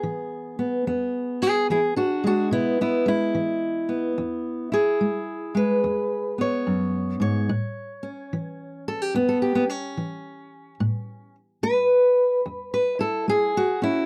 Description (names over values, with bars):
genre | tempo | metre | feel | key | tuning
acoustic country blues, solo or duo | 72 BPM | 4/4 | swing 64% on 8ths | E major | A4 = 440 Hz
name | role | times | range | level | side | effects
fingerpicked steel-string acoustic guitar | solo | 0.0-14.1 s | E2 to C#5 | -24 LUFS | equal | none
room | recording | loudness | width
little or no reverb | dry, close 1970s-style studio recording | -24 LUFS | mono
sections
0.0-14.1 A section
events
none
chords
0.0 E; 7.5 A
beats
0.04 | 0.87 1.70 2.53 3.36 | 4.18 5.01 5.84 6.66 | 7.49 8.32 9.14 9.97 | 10.80 11.62 12.45 13.28